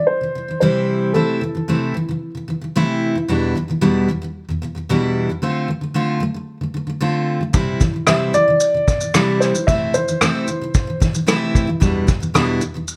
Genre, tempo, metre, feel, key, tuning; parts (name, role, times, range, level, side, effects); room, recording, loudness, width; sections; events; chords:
acoustic pop; 112 BPM; 4/4; straight; A4 = 440 Hz
dark upright piano; melody; 0.0-1.9, 8.1-11.0 s; A4 to E5; -21 LUFS; equal; plate reverb
picked steel-string acoustic guitar; accompaniment; 0.0-13.0 s; E2 to F4; -21 LUFS; equal; plate reverb
vintage brush drum kit; drums; 7.5-13.0 s; kick drum, rim click, shaker; -21 LUFS; equal
moderate studio reverb, RT60 0.6 s; -19 LUFS; mono
0.0-13.0 A section
0.0 C; 1.1 Am/C; 3.3 Em7; 5.4 Dm7; 7.5 C; 9.7 Am/C; 11.8 Em7